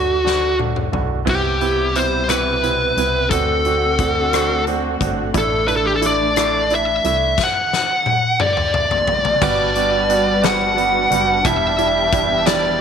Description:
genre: six-eight pop ballad.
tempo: 59 BPM (dotted quarters).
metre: 6/8.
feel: straight.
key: G major.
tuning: A4 = 440 Hz.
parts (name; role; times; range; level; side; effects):
fuzz lead guitar; melody; 0.0-12.8 s; F#4 to F#5; -17 LUFS; left 1 dB; distortion.
clear concert grand piano; accompaniment; 0.0-12.8 s; G3 to F#4; -22 LUFS; right 13 dB; none.
solid FM bass; bass; 0.0-12.8 s; E1 to D2; -26 LUFS; equal; none.
huge arena drum kit; drums; 0.3-12.6 s; crash cymbal, hi-hat, kick drum, rim click, snare drum, toms; -23 LUFS; left 6 dB; none.
dark studio string section; sustained chords; 1.3-12.8 s; B2 to B4; -24 LUFS; left 1 dB; none.
room: moderate plate reverb, RT60 1.7 s, small room ambience.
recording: 1960s-style stereo with parts hard left and right.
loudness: -15 LUFS.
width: side -7 dB against mid.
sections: 0.0-1.3 A section; 1.3-9.4 B section; 9.4-12.8 C section.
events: drum fill 0.2-1.3, 7.4-9.4.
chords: 0.0 D; 1.3 Cmaj7; 3.3 D7; 5.3 Asus4; 7.4 N.C.; 9.4 Gmaj7; 11.4 Em7.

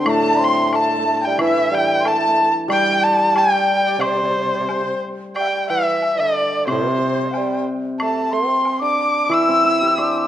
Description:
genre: chinese traditional, Chinese chamber ensemble.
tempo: 91 BPM.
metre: 2/4.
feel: rubato.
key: C gong mode.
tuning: A4 = 440 Hz.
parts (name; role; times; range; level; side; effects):
rich erhu; melody; 0.0-10.3 s; C5 to E6; -19 LUFS; equal; none.
warm bassoon; second line; 0.0-10.3 s; C3 to E4; -23 LUFS; right 5 dB; none.
hammered dulcimer; accompaniment; 0.0-4.7, 6.7-10.3 s; A2 to C5; -23 LUFS; left 1 dB; none.
mellow dizi; second line; 0.1-10.3 s; C5 to E6; -23 LUFS; left 4 dB; none.
woodblock; percussion; 0.1-10.1 s; none; -30 LUFS; left 1 dB; none.
room: moderate recital hall reverb, RT60 1.5 s.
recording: dark, warm production.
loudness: -16 LUFS.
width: side -11 dB against mid.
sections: 0.0-5.3 A section; 5.3-10.3 B section.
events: none.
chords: none.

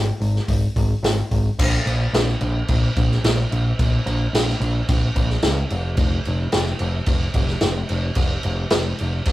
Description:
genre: indie rock.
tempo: 109 BPM.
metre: 4/4.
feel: straight.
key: Bb minor.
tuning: A4 = 440 Hz.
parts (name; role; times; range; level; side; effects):
growling picked electric bass; bass; 0.0-9.3 s; F1 to Db2; -21 LUFS; equal; overdrive.
vintage drum kit; drums; 0.2-9.3 s; crash cymbal, hi-hat, kick drum, snare drum; -21 LUFS; equal; none.
room: moderate small room reverb, RT60 0.5 s.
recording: rough rehearsal-room recording.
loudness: -18 LUFS.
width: side -16 dB against mid.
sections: 0.0-1.6 A section; 1.6-9.3 B section.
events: none.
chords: none.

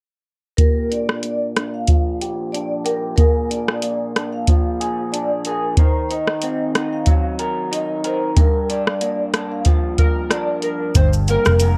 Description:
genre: indie pop, bedroom pop.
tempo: 92 BPM.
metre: 4/4.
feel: swing 55% on 16ths.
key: Bb major.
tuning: A4 = 440 Hz.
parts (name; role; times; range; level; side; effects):
vibraphone with medium mallets; second line; 0.6-10.8 s; Bb4 to F5; -27 LUFS; equal; ensemble chorus, analog delay.
electric guitar through a small old amp; accompaniment; 0.6-11.8 s; G2 to Bb4; -26 LUFS; equal; analog chorus, warbly pitch drift, low-pass filter.
soft vintage rhythm box; drums; 0.6-11.8 s; hi-hat, kick drum, rim click, shaker; -19 LUFS; equal; none.
warbly lo-fi synth keys; melody; 10.0-11.8 s; Bb4 to C5; -24 LUFS; equal; lush chorus.
vintage muted picked electric bass; bass; 11.0-11.8 s; F1 to G1; -18 LUFS; equal; none.
room: light reverb.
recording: dark, warm production.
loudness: -19 LUFS.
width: mono.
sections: 0.6-11.0 A section.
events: filter sweep on clean electric guitar 0.6-11.0.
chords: 0.6 Bb6; 3.2 Bb7; 5.8 Ebm6; 8.4 Gm7.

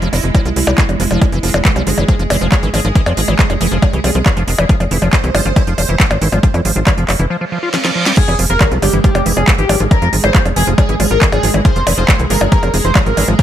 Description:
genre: psychedelic trance.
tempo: 138 BPM.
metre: 4/4.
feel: straight.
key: F harmonic minor.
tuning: A4 = 439 Hz.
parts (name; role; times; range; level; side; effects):
pulsing gated texture; sustained chords; 0.0-13.4 s; Ab3 to C5; -21 LUFS; right 3 dB; chorus, built-in reverb, sidechain pumping.
liquid acid bass; riff; 0.0-13.4 s; E3 to F4; -21 LUFS; equal; chorus, auto-pan, sidechain pumping, ping-pong delay.
tight sequencer bass; bass; 0.0-13.4 s; F1 to F2; -16 LUFS; equal; none.
techno drum kit; drums; 0.0-13.4 s; crash cymbal, handclaps, hi-hat, percussion blips, snare drum; -18 LUFS; equal; none.
electronic kick drum; drums; 0.3-13.4 s; none; -12 LUFS; equal; none.
reverse cymbal and impact; sound effects; 7.5-9.9 s; none; -22 LUFS; right 2 dB; none.
overdriven synth lead; melody; 8.2-13.4 s; G4 to C5; -18 LUFS; equal; phaser, sidechain pumping, ping-pong delay.
room: digital ambience.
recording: none.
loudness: -11 LUFS.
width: side -11 dB against mid.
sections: 0.0-8.2 A section; 8.2-13.4 B section.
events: reverse cymbal 7.5-8.2; drum fill 7.7-8.2; drop 8.2-13.4; impact 8.2-9.9.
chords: 0.0 F5.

